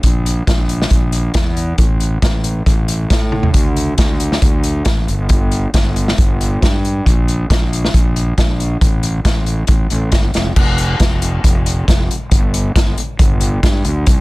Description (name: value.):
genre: indie rock.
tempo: 137 BPM.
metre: 4/4.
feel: straight.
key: unclear.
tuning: A4 = 440 Hz.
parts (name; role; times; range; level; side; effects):
fuzz fingered electric bass; bass; 0.0-14.2 s; F1 to A2; -17 LUFS; equal; overdrive.
vintage drum kit; drums; 0.0-14.2 s; crash cymbal, hi-hat, kick drum, snare drum, toms; -14 LUFS; equal; none.
room: little or no reverb.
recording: dense, heavily limited modern master.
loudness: -12 LUFS.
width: side -21 dB against mid.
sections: 0.0-10.6 A section; 10.6-14.2 B section.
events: drum fill 3.3.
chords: none.